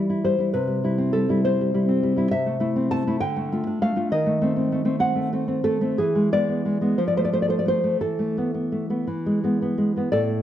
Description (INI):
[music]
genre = romantic piece for solo classical guitar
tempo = 56-69 BPM (dotted quarters)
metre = 6/8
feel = rubato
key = unclear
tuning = A4 = 439 Hz
[part]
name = nylon-string guitar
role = solo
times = 0.0-10.4 s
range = A2 to A5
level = -20 LUFS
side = equal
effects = none
[sound]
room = moderate recital hall reverb, RT60 1.4 s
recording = dark, warm production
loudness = -20 LUFS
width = side -11 dB against mid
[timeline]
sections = 0.0-10.1 A section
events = none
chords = 0.0 Em7; 0.5 C; 2.3 Am/C; 3.2 Dmadd11; 4.1 D#dim7; 6.0 E7; 7.0 F; 8.0 Esus4; 9.1 E